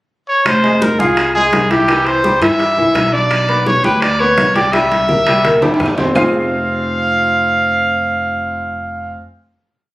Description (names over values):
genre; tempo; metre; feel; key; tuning
latin, salsa; 169 BPM; 4/4; straight; F harmonic minor; A4 = 440 Hz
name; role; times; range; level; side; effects
bright trumpet; melody; 0.3-9.2 s; G4 to F5; -15 LUFS; equal; none
upright bass; bass; 0.5-9.2 s; F1 to G2; -22 LUFS; equal; none
bongos; percussion; 0.5-6.2 s; none; -23 LUFS; left 2 dB; none
claves; percussion; 0.5-6.2 s; none; -28 LUFS; left 1 dB; none
congas; percussion; 0.5-6.2 s; none; -22 LUFS; equal; none
timbales; percussion; 0.5-6.2 s; none; -21 LUFS; right 2 dB; none
bright grand piano; accompaniment; 0.6-9.2 s; E3 to G5; -17 LUFS; left 1 dB; none
room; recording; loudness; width
light reverb; recorded on a phone in the room, studio reverb; -12 LUFS; side -18 dB against mid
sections
0.0-0.5 pickup bar; 0.5-6.2 verse; 6.2-9.0 final chord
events
drum fill 4.7-6.2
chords
0.5 Fm; 1.9 C; 3.3 G/B; 4.7 C7; 6.2 Fm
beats
0.10 | 0.46 0.81 1.17 1.53 | 1.88 2.24 2.60 2.95 | 3.31 3.67 4.02 4.38 | 4.73 5.09 5.45 5.80 | 6.16 6.51 6.87 7.22 | 7.58 7.93 8.29 8.64